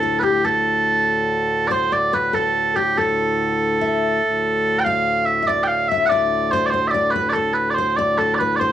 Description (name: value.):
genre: medieval.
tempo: 96 BPM (dotted quarters).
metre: 6/8.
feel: straight.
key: D dorian.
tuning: A4 = 439 Hz.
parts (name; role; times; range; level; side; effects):
mellow small bagpipes; melody; 0.0-8.7 s; G4 to G5; -18 LUFS; right 3 dB; cassette tape.
nylon-string guitar; second line; 0.0-8.7 s; G4 to F5; -25 LUFS; left 9 dB; cassette tape.
hand-pumped harmonium; drone; 0.0-8.7 s; D2 to A2; -26 LUFS; left 4 dB; cassette tape.
room: wet studio ambience, RT60 0.5 s.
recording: home recording on cassette.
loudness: -17 LUFS.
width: side -11 dB against mid.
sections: 0.0-8.7 A section.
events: none.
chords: none.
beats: | 0.45 1.08 | 1.71 2.34 | 2.97 3.60 | 4.23 4.85 | 5.48 6.11 | 6.73 7.35 | 7.98 8.60.